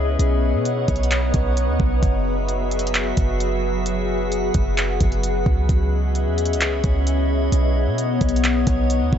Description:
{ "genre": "hip hop, atmospheric cloud-rap", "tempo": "131 BPM", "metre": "4/4", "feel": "half-time", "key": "B major", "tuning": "A4 = 438 Hz", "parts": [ { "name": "glassy FM pad", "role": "sustained chords", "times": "0.0-9.2 s", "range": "F#3 to F#5", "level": "-23 LUFS", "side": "left 2 dB", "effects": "ensemble chorus, built-in reverb, sidechain pumping" }, { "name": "clean 808-style bass", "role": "bass", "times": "0.0-9.2 s", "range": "F#1 to B2", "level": "-21 LUFS", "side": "equal", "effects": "none" }, { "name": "drifting glass-harmonics texture", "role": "texture", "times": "0.0-9.2 s", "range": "B3 to E5", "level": "-32 LUFS", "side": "right 4 dB", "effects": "chorus, built-in reverb" }, { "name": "smooth R&B drum kit", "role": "drums", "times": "0.2-9.2 s", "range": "handclaps, hi-hat, kick drum", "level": "-22 LUFS", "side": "equal", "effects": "none" } ], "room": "light reverb", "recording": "nothing above 7.9 kHz", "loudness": "-18 LUFS", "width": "side -9 dB against mid", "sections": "0.0-9.2 A section", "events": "none", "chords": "0.2 Badd9; 2.0 F#7sus4; 5.7 C#m7; 7.5 Badd9" }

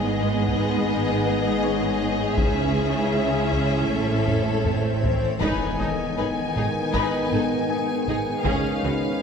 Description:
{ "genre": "cinematic, hybrid orchestral and electronic film score", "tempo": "79 BPM", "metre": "4/4", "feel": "straight", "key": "G# phrygian", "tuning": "A4 = 440 Hz", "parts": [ { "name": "warm symphonic violin section", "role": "melody", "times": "0.0-9.2 s", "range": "D#5 to G#5", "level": "-30 LUFS", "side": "left 6 dB", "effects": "none" }, { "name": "warm symphonic violin section", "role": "second line", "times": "0.0-8.9 s", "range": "F#4 to B4", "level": "-30 LUFS", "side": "left 4 dB", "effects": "none" }, { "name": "warm symphonic viola section", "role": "accompaniment", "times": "0.0-8.9 s", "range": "B3 to D#4", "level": "-31 LUFS", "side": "right 3 dB", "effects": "none" }, { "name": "dark French horn section", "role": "sustained chords", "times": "0.0-9.2 s", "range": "D#3 to E4", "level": "-30 LUFS", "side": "left 4 dB", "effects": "none" }, { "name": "granular cloud pad", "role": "sustained chords", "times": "0.0-9.2 s", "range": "E3 to G#5", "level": "-28 LUFS", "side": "left 1 dB", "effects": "built-in reverb" }, { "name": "dark symphonic cello section", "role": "bass", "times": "0.0-8.9 s", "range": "G#2 to C#3", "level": "-29 LUFS", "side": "right 3 dB", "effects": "none" }, { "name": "rich symphonic double bass section", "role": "bass", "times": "0.0-8.9 s", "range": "G#1 to C#2", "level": "-29 LUFS", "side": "right 4 dB", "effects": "none" }, { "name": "bright concert grand piano", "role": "texture", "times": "0.0-9.2 s", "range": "C#4 to G#5", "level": "-36 LUFS", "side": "left 2 dB", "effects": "tape echo" }, { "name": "taiko ensemble", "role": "drums", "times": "0.5-9.2 s", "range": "none", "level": "-29 LUFS", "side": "equal", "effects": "none" }, { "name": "swell and impact", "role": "sound effects", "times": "4.1-8.5 s", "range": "none", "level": "-33 LUFS", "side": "left 2 dB", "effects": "none" }, { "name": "warm trombone section", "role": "sustained chords", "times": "5.4-9.2 s", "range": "G#2 to G#3", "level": "-31 LUFS", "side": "right 4 dB", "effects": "none" } ], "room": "moderate scoring stage reverb, RT60 1.5 s", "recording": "none", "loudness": "-20 LUFS", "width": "side -6 dB against mid", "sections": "0.0-5.4 A section; 5.4-9.2 B section", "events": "swell 4.1-5.4; drum fill 4.3-5.4; impact 5.4-8.5", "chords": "0.0 G#m; 2.4 C#m; 3.9 A; 5.4 G#m; 8.5 C#" }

